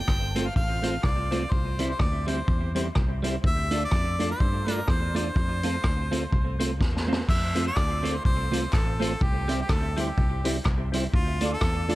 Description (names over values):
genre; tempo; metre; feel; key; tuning
ska; 125 BPM; 4/4; swing 58% on 8ths; F major; A4 = 442 Hz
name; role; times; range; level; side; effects
clear harmonica; melody; 0.0-12.0 s; F4 to G5; -31 LUFS; equal; dub echo
fingered electric bass; bass; 0.1-12.0 s; G1 to G2; -29 LUFS; equal; none
vintage drum kit; drums; 0.1-12.0 s; crash cymbal, hi-hat, kick drum, rim click, snare drum; -26 LUFS; equal; none
percussive tonewheel organ; stabs; 0.3-12.0 s; C4 to D5; -35 LUFS; left 3 dB; chorus vibrato, slow rotary speaker, dub echo
clean electric guitar; accompaniment; 0.4-12.0 s; G3 to F4; -32 LUFS; right 4 dB; dub echo
group handclap; percussion; 7.8-11.7 s; none; -42 LUFS; left 2 dB; none
room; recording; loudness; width
light reverb; none; -23 LUFS; side -17 dB against mid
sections
0.0-7.3 A section; 7.3-12.0 A section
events
drum fill 6.8-7.3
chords
0.0 F; 1.5 C; 3.4 Dm; 5.4 F; 9.2 C; 11.1 Dm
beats
0.08 0.56 1.04 | 1.52 2.00 2.48 2.96 | 3.44 3.92 4.40 4.88 | 5.36 5.84 6.32 6.80 | 7.29 7.77 8.25 8.73 | 9.21 9.69 10.17 10.65 | 11.13 11.61